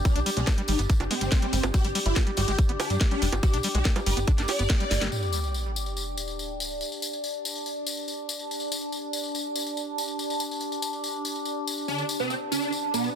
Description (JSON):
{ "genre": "psychedelic trance", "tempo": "142 BPM", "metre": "4/4", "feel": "straight", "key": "unclear", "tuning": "A4 = 440 Hz", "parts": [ { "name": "overtone-sweeping drone", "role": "sustained chords", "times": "0.0-13.2 s", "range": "D4 to G4", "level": "-34 LUFS", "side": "equal", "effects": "chorus, built-in reverb, phaser, sidechain pumping" }, { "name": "warbly tape-like pad", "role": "texture", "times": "0.0-13.2 s", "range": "D4 to D5", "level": "-37 LUFS", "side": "equal", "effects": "chorus, built-in reverb, sidechain pumping" }, { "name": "swarming rave lead", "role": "melody", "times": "0.1-5.0, 11.9-13.1 s", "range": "B3 to D5", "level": "-31 LUFS", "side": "right 1 dB", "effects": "chorus, phaser, sidechain pumping, ping-pong delay" }, { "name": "overdriven acid bass", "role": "riff", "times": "0.1-5.1 s", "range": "F3 to G4", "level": "-34 LUFS", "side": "moving between left 5 dB and right 5 dB", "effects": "distortion, auto-pan, sidechain pumping, ping-pong delay" }, { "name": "electronic kick drum", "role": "drums", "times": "0.1-4.8 s", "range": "none", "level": "-23 LUFS", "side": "equal", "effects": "none" }, { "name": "garage drum kit", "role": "drums", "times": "0.1-5.1 s", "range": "bongos, hi-hat, snare drum", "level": "-30 LUFS", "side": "right 1 dB", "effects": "low-pass filter on hats, low-pass filter on perc, low-pass filter on snare, low-pass filter on room" }, { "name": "tambourine", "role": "percussion", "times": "0.1-13.1 s", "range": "none", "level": "-34 LUFS", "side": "left 4 dB", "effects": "none" }, { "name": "plucky analog bass", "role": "bass", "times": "0.2-5.1 s", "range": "F1 to G2", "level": "-27 LUFS", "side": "equal", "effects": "none" }, { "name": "sub drop", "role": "sound effects", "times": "5.1-6.8 s", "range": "none", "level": "-32 LUFS", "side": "equal", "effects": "none" }, { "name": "resonant blip pluck", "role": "second line", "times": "12.2-12.4 s", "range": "B3", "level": "-46 LUFS", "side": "right 6 dB", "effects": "none" } ], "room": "light reverb", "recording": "dense, heavily limited modern master", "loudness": "-25 LUFS", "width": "side -8 dB against mid", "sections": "0.0-5.1 A section; 5.1-13.2 B section", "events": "band accent 4.7; drum fill 4.9; impact 5.1-6.8", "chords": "0.0 G5", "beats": "| 0.05 0.47 0.90 1.32 | 1.74 2.16 2.58 3.01 | 3.43 3.85 4.28 4.70 | 5.12 5.54 5.97 6.39 | 6.81 7.23 7.66 8.08 | 8.50 8.92 9.35 9.77 | 10.19 10.61 11.04 11.46 | 11.88 12.30 12.73 13.15" }